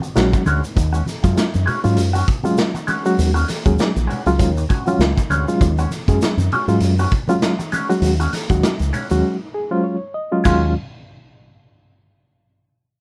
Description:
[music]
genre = funk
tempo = 99 BPM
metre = 4/4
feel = swing 56% on 16ths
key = Eb minor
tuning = A4 = 440 Hz
[part]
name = mellow electric guitar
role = accompaniment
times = 0.0-10.6 s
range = Ab3 to Gb4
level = -27 LUFS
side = equal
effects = wah, phaser
[part]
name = raw garage drum kit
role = drums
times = 0.0-10.6 s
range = crash cymbal, hi-hat, kick drum, snare drum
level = -24 LUFS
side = equal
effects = none
[part]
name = congas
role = percussion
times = 0.0-10.7 s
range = none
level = -31 LUFS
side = equal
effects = none
[part]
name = egg shaker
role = percussion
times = 0.0-10.7 s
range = none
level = -41 LUFS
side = equal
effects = none
[part]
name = bright reed electric piano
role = stabs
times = 0.2-10.7 s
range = Gb3 to Eb5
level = -21 LUFS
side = equal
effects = overdrive, fast tremolo
[part]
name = fingered electric bass with an envelope filter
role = bass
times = 0.2-10.7 s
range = Bb1 to Ab2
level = -21 LUFS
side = equal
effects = none
[sound]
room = little or no reverb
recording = none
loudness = -18 LUFS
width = mono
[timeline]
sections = 0.8-10.5 A section; 10.5-12.9 B section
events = break 9.2-10.5; reed electric piano fill 9.2-10.5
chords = 0.0 Ebm11 (rootless); 0.8 Ebm11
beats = 0.16 | 0.76 1.37 1.97 2.58 | 3.18 3.79 4.39 5.00 | 5.60 6.21 6.82 7.42 | 8.03 8.63 9.24 9.84 | 10.45

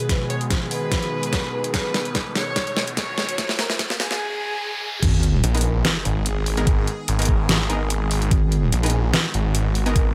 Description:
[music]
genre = heavy wobble dubstep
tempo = 146 BPM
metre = 4/4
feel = swing 53% on 16ths, half-time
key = G# minor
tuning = A4 = 440 Hz
[part]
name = warm chamber violin section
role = melody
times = 0.0-4.9 s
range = G#4 to C#5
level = -31 LUFS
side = equal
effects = tape echo
[part]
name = evolving wavetable pad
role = sustained chords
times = 0.0-10.1 s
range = B2 to G#4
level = -34 LUFS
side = equal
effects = phaser, built-in reverb, sidechain pumping
[part]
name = dubstep drum kit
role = drums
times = 0.0-10.0 s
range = crash cymbal, hi-hat, snare drum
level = -26 LUFS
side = equal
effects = overdrive
[part]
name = riser and sub drop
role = sound effects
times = 1.0-6.7 s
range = none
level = -33 LUFS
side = equal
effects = none
[part]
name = electronic kick drum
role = drums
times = 0.1-10.0 s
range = none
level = -24 LUFS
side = equal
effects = none
[part]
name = wobble bass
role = bass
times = 5.0-5.4, 8.3-8.7 s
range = G#1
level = -22 LUFS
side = equal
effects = chorus, overdrive
[part]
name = snarling distorted saw bass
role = bass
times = 5.4-10.1 s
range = G#1 to A#1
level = -24 LUFS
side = equal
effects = distortion, overdrive
[part]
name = orchestra-hit-like synth stab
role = stabs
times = 5.5-10.0 s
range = B3 to A#4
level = -31 LUFS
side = equal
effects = built-in reverb, tape echo
[sound]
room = light reverb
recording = high-pass filter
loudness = -22 LUFS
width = mono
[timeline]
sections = 0.0-5.0 A section; 5.0-10.1 B section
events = build-up 0.0-5.0; drum fill 0.0-4.2; filter sweep 0.0-5.0; riser 1.0-5.0; drop 5.0-10.1; impact 5.0-6.7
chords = 0.0 G#m; 5.0 G#madd9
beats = | 0.09 0.51 0.92 1.33 | 1.74 2.15 2.56 2.97 | 3.38 3.79 4.20 4.62 | 5.03 5.44 5.85 6.26 | 6.67 7.08 7.49 7.90 | 8.31 8.72 9.13 9.55 | 9.96

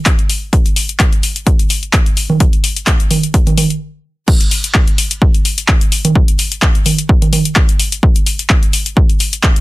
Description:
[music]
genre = house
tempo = 128 BPM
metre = 4/4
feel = swing 54% on 16ths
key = none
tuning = none
[part]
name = electronic kick drum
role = drums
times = 0.1-9.5 s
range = none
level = -12 LUFS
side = equal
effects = none
[part]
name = punchy analog drum machine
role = drums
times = 0.1-9.6 s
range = congas, crash cymbal, handclaps, hi-hat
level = -15 LUFS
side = equal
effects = overdrive
[sound]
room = little or no reverb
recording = dense, heavily limited modern master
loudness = -10 LUFS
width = side -19 dB against mid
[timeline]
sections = 0.0-4.3 A section; 4.3-9.6 B section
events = stop 3.8-4.3; drop 4.3-9.6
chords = none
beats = 0.06 | 0.53 1.00 1.47 1.94 | 2.40 2.87 3.34 3.81 | 4.28 4.75 5.22 5.68 | 6.15 6.62 7.09 7.56 | 8.03 8.50 8.97 9.44

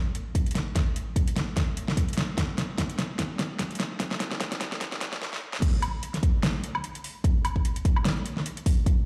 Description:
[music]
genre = future bass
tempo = 148 BPM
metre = 4/4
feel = swing 56% on 16ths, half-time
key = none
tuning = none
[part]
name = pop drum kit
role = drums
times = 0.1-9.0 s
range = crash cymbal, hi-hat, snare drum, woodblock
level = -32 LUFS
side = equal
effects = none
[part]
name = electronic kick drum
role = drums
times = 0.3-9.0 s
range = none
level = -28 LUFS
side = equal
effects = none
[sound]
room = moderate lush hall reverb, RT60 1.6 s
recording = played on a big sound system in a bare room, large studio reverb, high-pass filter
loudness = -28 LUFS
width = mono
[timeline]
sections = 0.0-5.6 A section; 5.6-9.1 B section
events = build-up 0.0-5.6; drum fill 0.0-5.2, 5.2-5.6; filter sweep 0.0-5.6; drop 5.6-9.1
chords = none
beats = 0.35 | 0.76 1.16 1.57 1.97 | 2.38 2.78 3.19 3.59 | 4.00 4.41 4.81 5.22 | 5.62 6.03 6.43 6.84 | 7.24 7.65 8.05 8.46 | 8.86

